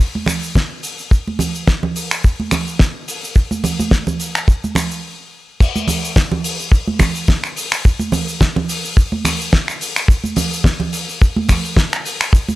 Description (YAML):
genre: nu-disco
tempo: 107 BPM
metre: 4/4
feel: swing 56% on 16ths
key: none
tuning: none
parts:
  - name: congas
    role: percussion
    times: 0.2-12.6 s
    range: none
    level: -20 LUFS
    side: right 3 dB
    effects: none
  - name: damped 70s drum kit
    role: drums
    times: 0.3-12.6 s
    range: crash cymbal, finger snaps, hi-hat, shaker, snare drum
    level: -20 LUFS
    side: left 1 dB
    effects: none
  - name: kick drum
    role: drums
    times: 0.6-12.5 s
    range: none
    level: -11 LUFS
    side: equal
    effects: none
room: small room ambience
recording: dry, gritty hardware recording, cassette tape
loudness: -15 LUFS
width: side -18 dB against mid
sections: 0.0-5.6 A section; 5.6-12.6 B section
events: stop 5.0-5.6; drop 5.6-12.6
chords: none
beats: 0.56 | 1.12 1.68 2.24 2.80 | 3.36 3.92 4.48 5.04 | 5.60 6.16 6.72 7.28 | 7.84 8.41 8.97 9.53 | 10.09 10.65 11.21 11.77 | 12.33